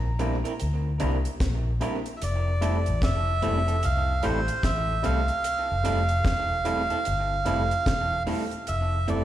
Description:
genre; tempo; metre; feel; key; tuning
lovers rock reggae; 74 BPM; 4/4; swing 62% on 16ths; F major; A4 = 439 Hz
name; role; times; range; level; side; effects
vintage muted fingered electric bass; bass; 0.0-9.2 s; E1 to D2; -26 LUFS; equal; none
overdriven tine electric piano; accompaniment; 0.2-9.2 s; G3 to E4; -32 LUFS; left 4 dB; slapback echo
electric guitar through a small old amp; stabs; 0.2-9.2 s; C4 to Bb4; -33 LUFS; right 6 dB; analog delay, slapback echo
deep reggae drum kit; drums; 0.2-9.2 s; hi-hat, kick drum, snare drum; -30 LUFS; equal; analog delay
melodica; melody; 2.2-9.2 s; C5 to F5; -28 LUFS; right 2 dB; tape echo, slapback echo
room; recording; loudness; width
light reverb; live gig heard through the venue's PA, recital hall reverb; -23 LUFS; side -12 dB against mid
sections
0.0-8.7 A section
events
none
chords
0.0 C7; 2.2 Fmaj7

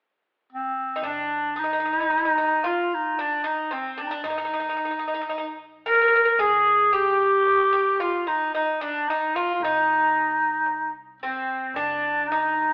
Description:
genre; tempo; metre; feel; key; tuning
Turkish makam ensemble; 112 BPM (eighths); 10/8; straight; unclear; A4 = 441 Hz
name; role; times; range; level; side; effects
growling clarinet; melody; 0.5-12.7 s; C4 to Bb4; -24 LUFS; equal; none
Greek bouzouki; second line; 1.0-12.7 s; C4 to Bb4; -32 LUFS; equal; none
upright bass; bass; 1.0-12.7 s; Bb1 to C2; -55 LUFS; equal; none
darbuka; percussion; 1.0-12.0 s; none; -53 LUFS; equal; none
room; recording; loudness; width
wet stone room reverb, RT60 1.2 s; band playing live in one room, telephone sound; -23 LUFS; mono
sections
0.0-1.0 A section; 1.0-12.7 B section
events
none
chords
none

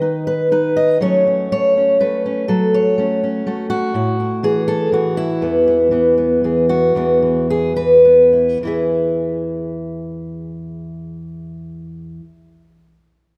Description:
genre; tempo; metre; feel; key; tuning
folk, solo fingerstyle acoustic guitar; 101-124 BPM; 3/4; rubato; E major; A4 = 441 Hz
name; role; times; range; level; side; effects
fingerpicked steel-string acoustic guitar; solo; 0.0-12.3 s; E2 to E5; -17 LUFS; equal; none
room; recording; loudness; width
moderate scoring stage reverb, RT60 2.1 s; none; -16 LUFS; mono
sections
0.0-7.0 A section; 7.0-8.6 B section; 8.6-12.1 C section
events
slowing down 5.4-8.6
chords
0.0 B/D#; 1.0 F#m; 3.9 A5; 5.4 E

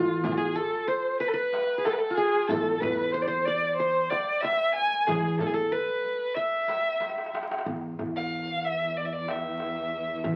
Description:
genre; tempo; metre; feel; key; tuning
Arabic maqam ensemble; 93 BPM; 4/4; straight; E maqam hijaz; A4 = 440 Hz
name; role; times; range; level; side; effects
dark violin; melody; 0.0-10.4 s; F4+23c to G#5; -29 LUFS; equal; none
qanun; second line; 0.0-7.3 s; F4+25c to E5; -32 LUFS; equal; none
upright bass; bass; 0.0-10.4 s; E2 to E3; -34 LUFS; equal; none
darbuka; percussion; 0.2-10.4 s; none; -39 LUFS; equal; none
riq; percussion; 0.2-7.4 s; none; -43 LUFS; equal; none
rich studio cello section; drone; 7.7-10.4 s; E2; -41 LUFS; equal; none
room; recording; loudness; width
moderate small room ambience, RT60 0.5 s; very old 78 rpm record, vinyl crackle; -28 LUFS; mono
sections
0.0-7.7 A section; 7.7-10.4 B section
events
drum fill 7.0-7.7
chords
none

